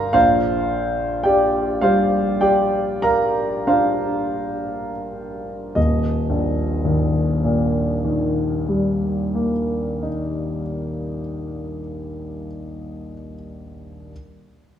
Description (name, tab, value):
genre	classical, impressionist solo piano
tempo	27-37 BPM (dotted quarters)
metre	9/8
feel	rubato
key	Eb major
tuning	A4 = 438 Hz
part	clear grand piano	solo	0.0-14.1 s	Eb1 to C6	-19 LUFS	equal	none
room	moderate scoring stage reverb, RT60 2.0 s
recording	small room ambience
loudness	-18 LUFS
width	side -9 dB against mid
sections	0.0-5.8 A section; 5.8-11.9 B section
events	slowing down 0.0-5.8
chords	0.1 Bb69; 5.8 Eb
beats	| 0.14 1.82 3.67 | 5.76 7.79 9.83